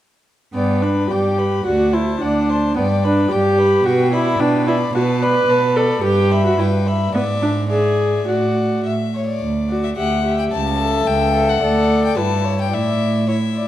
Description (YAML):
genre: quick classical-period movement for string quartet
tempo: 109 BPM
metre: 2/4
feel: straight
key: G major, D major from 4.9 s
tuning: A4 = 442 Hz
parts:
  - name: rich violin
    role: melody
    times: 0.5-13.7 s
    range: D5 to B5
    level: -26 LUFS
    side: left 9 dB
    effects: none
  - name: warm viola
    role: accompaniment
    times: 0.5-13.6 s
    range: B3 to B4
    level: -19 LUFS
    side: equal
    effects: none
  - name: rich cello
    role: bass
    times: 0.5-13.7 s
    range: C#2 to B2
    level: -20 LUFS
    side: right 2 dB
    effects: none
  - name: warm violin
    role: second line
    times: 0.6-13.7 s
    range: B4 to E5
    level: -24 LUFS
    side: left 3 dB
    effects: none
room: wet recital hall reverb, RT60 1.7 s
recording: dark, warm production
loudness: -15 LUFS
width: side -12 dB against mid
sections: 0.5-9.4 A section; 9.4-13.7 B section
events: none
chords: 0.5 G; 1.7 D7; 2.8 G; 3.9 G/B; 4.9 Bm7; 6.0 Em/G; 7.2 E7/G#; 8.3 D/A; 8.8 A; 9.4 D; 10.0 Em7/D; 10.5 A/C#; 11.6 D; 12.2 Em/G; 12.7 Asus4